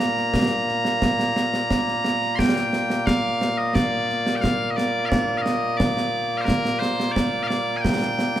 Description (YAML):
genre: scottish traditional, Scottish pipe music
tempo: 88 BPM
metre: 4/4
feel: straight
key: Bb major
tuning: A4 = 440 Hz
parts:
  - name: loud bright bagpipes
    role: melody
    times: 0.0-8.4 s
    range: Bb2 to C6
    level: -22 LUFS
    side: equal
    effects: none
  - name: concert snare drum and concert bass drum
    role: drums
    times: 0.0-8.4 s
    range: none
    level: -24 LUFS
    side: right 1 dB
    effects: none
room: moderate concert hall reverb, RT60 2.4 s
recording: none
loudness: -20 LUFS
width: side -12 dB against mid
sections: 0.0-2.4 A section; 2.4-8.4 B section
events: none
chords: none